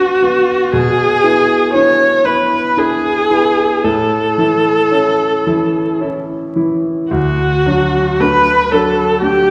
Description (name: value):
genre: classical, romantic duo for viola and grand piano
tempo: 54-60 BPM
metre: 3/4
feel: rubato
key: D major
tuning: A4 = 437 Hz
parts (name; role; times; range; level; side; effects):
- rich viola; melody; 0.0-9.5 s; F#4 to C#5; -15 LUFS; equal; none
- bright grand piano; accompaniment; 0.0-9.5 s; D2 to F#4; -18 LUFS; equal; none
room: wet recital hall reverb, RT60 1.5 s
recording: heard from further back in the room, vinyl crackle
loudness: -14 LUFS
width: mono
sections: 0.0-9.5 A section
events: none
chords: 0.0 Bm; 0.7 E7/B; 3.8 A; 7.1 D